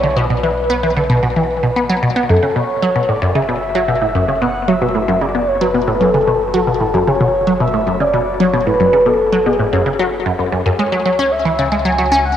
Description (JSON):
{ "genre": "ambient, sequencer-driven space music", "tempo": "113 BPM", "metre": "4/4", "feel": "straight", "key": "unclear", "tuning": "A4 = 437 Hz", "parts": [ { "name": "breathy flute-like synth lead", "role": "melody", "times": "0.0-12.4 s", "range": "G#4 to G#5", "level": "-17 LUFS", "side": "equal", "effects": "tremolo, wide subtle chorus, vintage 12-bit sampler grit, cassette tape, shimmer reverb, ping-pong delay" }, { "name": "resonant blip pluck", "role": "riff", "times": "0.0-12.2 s", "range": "F#2 to C#4", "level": "-15 LUFS", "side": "equal", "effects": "phaser, shimmer reverb, ping-pong delay" }, { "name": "warm sub bass", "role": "bass", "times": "0.0-12.4 s", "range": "F#1 to C#2", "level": "-28 LUFS", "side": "equal", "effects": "tube saturation" } ], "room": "wet spring reverb, RT60 2.0 s", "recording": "home recording on cassette", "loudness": "-13 LUFS", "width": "side -10 dB against mid", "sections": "0.0-12.4 A section", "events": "none", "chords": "0.0 N.C.; 10.8 C#m" }